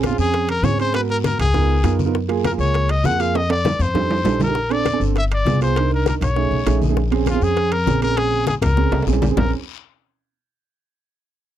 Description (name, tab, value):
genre	Afro-Cuban jazz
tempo	199 BPM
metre	4/4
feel	straight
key	Bb minor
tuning	A4 = 440 Hz
part	dark upright piano	accompaniment	0.0-9.5 s	A3 to Bb4	-22 LUFS	right 11 dB	none
part	upright bass	bass	0.0-9.5 s	G1 to Ab2	-20 LUFS	left 1 dB	none
part	bongos	percussion	0.0-9.4 s	none	-26 LUFS	left 10 dB	none
part	congas	percussion	0.0-9.4 s	none	-27 LUFS	left 2 dB	none
part	guiro	percussion	0.0-9.4 s	none	-39 LUFS	left 24 dB	none
part	timbales	percussion	0.0-9.4 s	none	-26 LUFS	right 4 dB	none
part	brilliant trumpet	melody	0.1-9.5 s	F4 to Gb5	-22 LUFS	left 2 dB	none
room	little or no reverb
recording	dry, close 1970s-style studio recording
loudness	-16 LUFS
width	side -11 dB against mid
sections	0.0-9.4 A section; 9.4-10.6 B section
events	drum fill 3.4-4.6, 8.6-9.4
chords	0.0 Bbm7; 0.9 Abm7; 1.5 Db13; 2.1 Gbmaj9; 3.4 F13; 4.6 Bbmaj9; 5.2 G7b9; 5.8 Cm7; 6.4 B13; 7.0 Bbm7